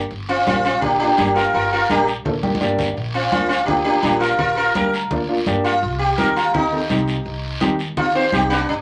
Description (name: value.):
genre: latin, cumbia.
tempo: 168 BPM.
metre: 4/4.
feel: straight.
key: unclear.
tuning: A4 = 440 Hz.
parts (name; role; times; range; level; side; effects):
upright bass; bass; 0.0-8.8 s; G1 to G2; -31 LUFS; equal; none.
congas; percussion; 0.1-8.8 s; none; -29 LUFS; equal; none.
guiro; percussion; 0.1-8.8 s; none; -32 LUFS; equal; none.
sitar; melody; 0.3-8.7 s; Bb3 to C5; -20 LUFS; equal; none.
dark upright piano; accompaniment; 0.5-8.6 s; Bb3 to G5; -25 LUFS; equal; none.
room: moderate small room ambience, RT60 0.5 s.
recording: none.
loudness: -19 LUFS.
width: mono.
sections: 0.0-8.7 A section.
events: sitar solo 0.0-8.7; upright piano fill 2.3-3.0; drum fill 2.4-3.0.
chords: 0.0 Gm; 3.0 Bb; 5.8 Cm.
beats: | 0.10 0.46 0.82 1.18 | 1.54 1.89 2.25 2.61 | 2.97 3.32 3.68 4.04 | 4.40 4.75 5.11 5.47 | 5.83 6.18 6.54 6.90 | 7.25 7.61 7.97 8.33 | 8.69.